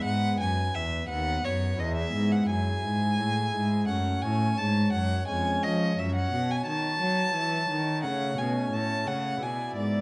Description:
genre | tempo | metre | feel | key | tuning
classical, baroque-style sonata movement with continuo | 86 BPM | 3/4 | straight | unclear | A4 = 441 Hz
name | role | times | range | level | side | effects
warm violin | melody | 0.0-10.0 s | C#5 to A5 | -32 LUFS | equal | none
pipe organ, cornet | accompaniment | 0.0-10.0 s | D#2 to D5 | -36 LUFS | equal | none
warm cello | bass | 0.0-10.0 s | D#2 to F#3 | -31 LUFS | equal | none
room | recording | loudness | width
wet recital hall reverb, RT60 1.4 s | nothing above 10.5 kHz | -28 LUFS | mono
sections
0.0-10.0 A section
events
none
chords
0.0 E; 1.1 B/D#; 1.8 E; 3.9 F#m; 5.3 C#/E#; 6.0 F#m; 8.0 A; 9.4 E7/B

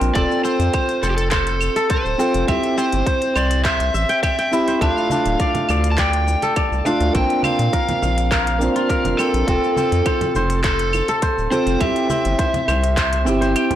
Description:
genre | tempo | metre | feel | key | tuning
organic downtempo | 103 BPM | 4/4 | straight | unclear | A4 = 442 Hz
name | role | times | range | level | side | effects
felt-muted upright piano | accompaniment | 0.0-13.8 s | A3 to C5 | -22 LUFS | right 2 dB | sidechain pumping, tape echo
kora | arpeggios | 0.0-13.8 s | C4 to G5 | -23 LUFS | left 1 dB | tape echo
round analog bass | bass | 0.0-13.6 s | D1 to Bb2 | -21 LUFS | equal | sidechain pumping
organic electronic drum kit | drums | 0.0-13.8 s | cabasa, claves, handclaps, hi-hat | -26 LUFS | equal | overdrive
overdriven slide guitar | melody | 0.1-13.5 s | G4 to A5 | -23 LUFS | left 1 dB | ping-pong delay
electronic kick drum | drums | 0.2-13.1 s | none | -24 LUFS | equal | overdrive
congas and bongos | percussion | 5.1-13.8 s | none | -29 LUFS | right 2 dB | none
room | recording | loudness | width
light reverb, digital ambience | blown-out, overdriven recording, overdrive | -16 LUFS | side -11 dB against mid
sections
0.0-13.8 A section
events
none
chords
0.2 F; 2.5 C; 4.8 Dm; 7.1 Bbadd9; 9.5 F; 11.8 C

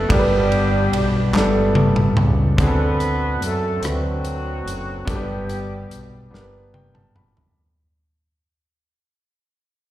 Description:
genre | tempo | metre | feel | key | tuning
slow gospel | 48 BPM (dotted quarters) | 6/8 | straight | G major | A4 = 439 Hz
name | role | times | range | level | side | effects
dark horn section | melody | 0.0-6.7 s | F#3 to B4 | -25 LUFS | equal | slapback echo
clear grand piano | accompaniment | 0.0-7.6 s | G2 to B5 | -22 LUFS | equal | slapback echo
growling FM bass | bass | 0.0-7.5 s | F#1 to F#2 | -22 LUFS | equal | none
modern studio drum kit | drums | 0.1-7.6 s | hi-hat, kick drum, ride cymbal, rim click, snare drum, toms | -21 LUFS | equal | none
group handclap | percussion | 1.3-1.7 s | none | -27 LUFS | right 2 dB | none
room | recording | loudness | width
light reverb | live gig heard through the venue's PA, recital hall reverb | -17 LUFS | side -14 dB against mid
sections
0.0-2.6 A section; 2.6-7.6 B section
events
drum fill 1.3-2.6, 6.3-7.6; fade-out 2.6-7.6; grand piano fill 6.3-7.6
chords
0.1 G; 2.6 D7; 5.1 G

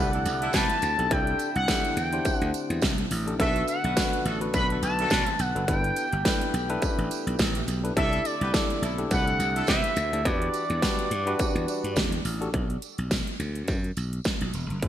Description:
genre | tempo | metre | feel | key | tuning
early-eighties boogie funk | 105 BPM | 4/4 | swing 56% on 16ths | unclear | A4 = 440 Hz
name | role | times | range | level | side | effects
expressive synth lead | melody | 0.0-12.0 s | D5 to B5 | -29 LUFS | equal | chorus, ping-pong delay
dark horn section | second line | 0.0-9.9 s | A3 to B4 | -34 LUFS | equal | none
barky tine electric piano | accompaniment | 0.0-12.5 s | D4 to C5 | -32 LUFS | left 2 dB | none
chorused pulse-width pad | sustained chords | 0.0-12.5 s | D3 to F#5 | -38 LUFS | right 1 dB | none
slap bass | bass | 0.0-14.9 s | E1 to C3 | -29 LUFS | equal | none
dubstep drum kit | drums | 0.1-14.9 s | handclaps, hi-hat, kick drum, snare drum | -28 LUFS | equal | distortion, gated reverb
tambourine | percussion | 0.3-14.7 s | none | -40 LUFS | right 11 dB | none
room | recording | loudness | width
moderate lush hall reverb, RT60 2.1 s | bright 1980s-style digital production | -24 LUFS | side -11 dB against mid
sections
0.0-12.5 A section; 12.5-14.9 B section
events
none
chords
0.0 C69; 3.4 Bm7; 5.7 G69; 8.0 C69; 10.3 Em9; 12.5 B5

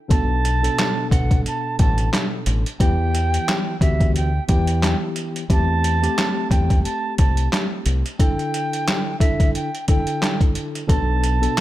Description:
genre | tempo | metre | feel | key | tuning
hip hop, boom-bap hip-hop | 89 BPM | 4/4 | swing 56% on 16ths | unclear | A4 = 440 Hz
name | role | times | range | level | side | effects
silver concert flute | melody | 0.1-11.6 s | E5 to A5 | -26 LUFS | right 3 dB | high-pass filter, low-pass filter, tape echo
mellow tine electric piano | accompaniment | 0.1-11.6 s | B2 to A4 | -26 LUFS | left 1 dB | medium stereo tremolo, high-pass filter, low-pass filter
deep dub fingered electric bass | bass | 0.1-11.5 s | A1 to E2 | -20 LUFS | equal | none
trip hop sampler-style drum kit | drums | 0.1-11.6 s | handclaps, hi-hat, kick drum, snare drum | -20 LUFS | equal | overdrive
room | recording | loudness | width
little or no reverb | none | -17 LUFS | side -15 dB against mid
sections
0.1-11.6 A section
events
none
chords
0.1 Bm7; 2.8 Emadd9; 5.5 Am7/E; 8.2 Dsus2; 10.9 Bm7

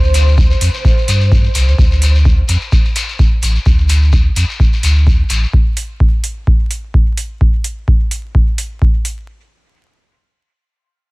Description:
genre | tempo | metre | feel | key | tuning
dub techno | 128 BPM | 4/4 | swing 54% on 16ths | D minor | A4 = 440 Hz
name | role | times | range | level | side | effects
dark analog pad | sustained chords | 0.0-1.7 s | C4 to A4 | -43 LUFS | equal | none
pure sine sub bass | bass | 0.0-5.5 s | A1 to G2 | -12 LUFS | equal | sidechain pumping
shekere | percussion | 0.0-5.5 s | none | -22 LUFS | left 4 dB | none
bubbling stepped-filter texture | texture | 0.0-1.8 s | C5 | -25 LUFS | right 1 dB | chorus, built-in reverb, sidechain pumping
electronic hi-hat | drums | 0.1-9.2 s | none | -22 LUFS | right 3 dB | none
electronic kick drum | drums | 0.4-8.9 s | none | -12 LUFS | equal | none
room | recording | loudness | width
digital ambience | vinyl crackle | -11 LUFS | side -23 dB against mid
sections
0.0-9.3 A section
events
none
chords
0.0 Dm7

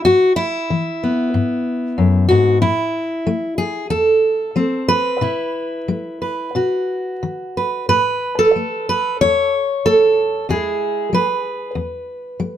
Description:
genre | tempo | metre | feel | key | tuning
folk, solo fingerstyle acoustic guitar | 92 BPM | 4/4 | uneven beats, rubato | E major | A4 = 441 Hz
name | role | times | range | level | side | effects
fingerpicked steel-string acoustic guitar | solo | 0.0-12.6 s | E2 to C#5 | -16 LUFS | equal | none
room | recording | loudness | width
light reverb | none | -16 LUFS | side -10 dB against mid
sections
0.0-12.6 A section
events
none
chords
0.1 Eadd9/G#; 2.6 Am; 5.2 E/B; 6.5 B; 7.9 Aadd9; 10.5 E

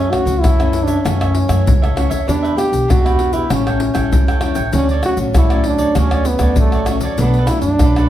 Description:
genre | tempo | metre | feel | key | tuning
samba and choro | 98 BPM | 4/4 | straight | unclear | A4 = 440 Hz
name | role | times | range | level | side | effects
warm trombone | melody | 0.0-8.1 s | A3 to G4 | -19 LUFS | right 1 dB | none
cavaquinho | accompaniment | 0.0-8.1 s | D4 to G5 | -25 LUFS | right 3 dB | none
nylon-string guitar | accompaniment | 0.0-8.1 s | F#2 to G4 | -22 LUFS | left 3 dB | none
upright bass | bass | 0.0-8.1 s | A1 to F#2 | -19 LUFS | equal | none
surdo, pandeiro, tamborim and egg shaker | percussion | 0.1-8.1 s | none | -17 LUFS | equal | none
room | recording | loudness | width
wet large studio reverb, RT60 0.9 s | heard from further back in the room | -13 LUFS | side -12 dB against mid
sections
0.0-8.1 A section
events
none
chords
0.0 F#m7; 2.3 Em7; 3.5 A7; 4.7 Dmaj7; 7.2 Bm7

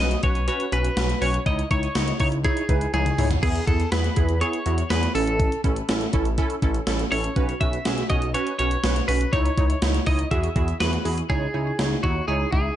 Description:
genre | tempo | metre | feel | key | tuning
synth-pop | 122 BPM | 4/4 | straight | unclear | A4 = 440 Hz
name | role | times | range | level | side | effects
twelve-string electric guitar | melody | 0.0-12.8 s | F#4 to E5 | -27 LUFS | equal | ping-pong delay
funky polysynth comp | accompaniment | 0.0-12.7 s | B3 to E5 | -27 LUFS | right 2 dB | chorus
smooth synth bass | bass | 0.0-12.7 s | A1 to E2 | -25 LUFS | equal | none
gated 80s digital drum machine | drums | 0.1-12.6 s | crash cymbal, hi-hat, kick drum, snare drum, toms | -25 LUFS | equal | gated reverb, gated reverb snare
room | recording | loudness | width
little or no reverb | nothing above 10.6 kHz | -20 LUFS | side -12 dB against mid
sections
0.0-11.3 A section; 11.3-12.8 B section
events
drum fill 2.9-3.4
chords
0.0 Bsus2; 1.5 C#madd9; 3.4 E; 5.2 A; 7.4 Bsus2; 9.3 C#madd9; 10.3 Eadd9; 11.3 C#madd9

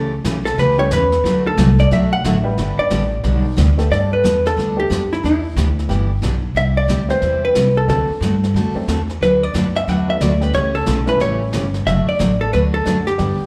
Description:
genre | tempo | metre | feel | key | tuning
country, western swing | 181 BPM | 4/4 | swing 63% on 8ths | G major | A4 = 440 Hz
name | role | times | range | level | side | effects
vintage hollow-body jazz guitar | melody | 0.0-13.5 s | E4 to F#5 | -21 LUFS | equal | none
picked steel-string acoustic guitar | accompaniment | 0.0-13.4 s | C3 to B4 | -24 LUFS | equal | none
upright bass | bass | 0.0-13.4 s | F#1 to G2 | -21 LUFS | equal | none
jazz brush drum kit | drums | 0.2-13.5 s | brushed snare drum, hi-hat, snare drum | -31 LUFS | equal | none
honky-tonk upright piano | accompaniment | 0.8-13.5 s | D3 to B4 | -29 LUFS | equal | none
room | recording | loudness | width
light reverb, small room reverb | live gig heard through the venue's PA, club reverb | -17 LUFS | mono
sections
0.0-3.9 A section; 3.9-13.5 B section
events
hollow-body jazz guitar solo 0.0-3.9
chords
0.0 A7; 1.2 D; 2.6 G; 3.9 Gadd9; 5.2 Em7; 6.6 C; 7.9 D7; 9.2 D6; 10.5 A7; 11.9 D

